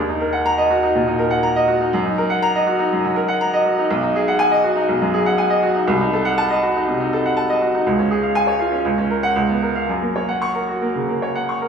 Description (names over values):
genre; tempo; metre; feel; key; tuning
classical, virtuoso piano study; 121 BPM; 4/4; rubato; Eb minor, F# major from 3.9 s; A4 = 440 Hz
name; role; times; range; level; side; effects
bright baby grand piano; solo; 0.0-11.7 s; B1 to C#6; -16 LUFS; equal; none
room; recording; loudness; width
wet recital hall reverb, RT60 1.5 s; recorded in a church or concert hall, small room ambience; -16 LUFS; side -6 dB against mid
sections
0.0-11.7 A section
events
none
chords
0.0 Ebm; 1.9 Ebm/Gb; 3.9 G#m7/B; 5.9 Cdim7; 7.8 C#; 8.8 F#/C#; 9.4 C#6; 9.9 F#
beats
0.45 0.95 1.44 | 1.93 2.43 2.91 3.41 | 3.90 4.39 4.89 5.38 | 5.88 6.37 6.86 7.36 | 7.85 8.34 8.85 9.36 | 9.88 10.41 10.94 11.47